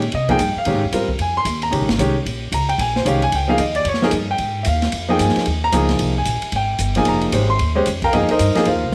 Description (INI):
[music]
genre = modal jazz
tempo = 225 BPM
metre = 4/4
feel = swing 61% on 8ths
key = F minor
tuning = A4 = 439 Hz
[part]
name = upright bass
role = bass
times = 0.0-8.9 s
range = F1 to C3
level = -24 LUFS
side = equal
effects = none
[part]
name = open jazz drum kit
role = drums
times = 0.0-8.9 s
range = hi-hat, kick drum, ride cymbal, snare drum, toms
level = -28 LUFS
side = equal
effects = none
[part]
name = clear concert grand piano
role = accompaniment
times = 0.1-8.9 s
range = Eb3 to C6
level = -21 LUFS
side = equal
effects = none
[sound]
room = light reverb, studio reverb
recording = none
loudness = -19 LUFS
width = mono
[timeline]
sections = 0.0-8.9 A section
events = none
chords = 0.0 Fm11; 0.7 Bbm11; 4.9 Fm11